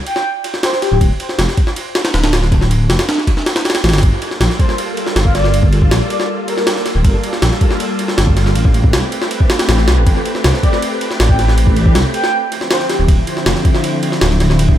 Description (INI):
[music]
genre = drum and bass, jungle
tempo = 159 BPM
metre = 4/4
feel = straight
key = G dorian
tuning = A4 = 440 Hz
[part]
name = breathy flute-like synth lead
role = melody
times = 0.1-1.0, 4.6-6.6, 10.6-13.1 s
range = G4 to G5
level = -21 LUFS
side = equal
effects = wide subtle chorus, dub echo
[part]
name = jungle sampler-style drum kit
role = drums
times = 0.1-14.8 s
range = kick drum, ride cymbal, snare drum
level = -15 LUFS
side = equal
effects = overdrive, small room reverb, dub echo
[part]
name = dark detuned saw bass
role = bass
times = 0.9-14.8 s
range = D1 to C2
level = -14 LUFS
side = equal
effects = tube saturation
[part]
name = soft string machine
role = sustained chords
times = 4.2-14.8 s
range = D3 to B4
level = -20 LUFS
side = equal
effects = ensemble chorus
[sound]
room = light reverb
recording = echo-heavy mix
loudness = -12 LUFS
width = side -11 dB against mid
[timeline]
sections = 0.0-14.8 A section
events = none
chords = 0.3 N.C.; 4.0 Gm9; 8.6 Am9; 12.3 Dm9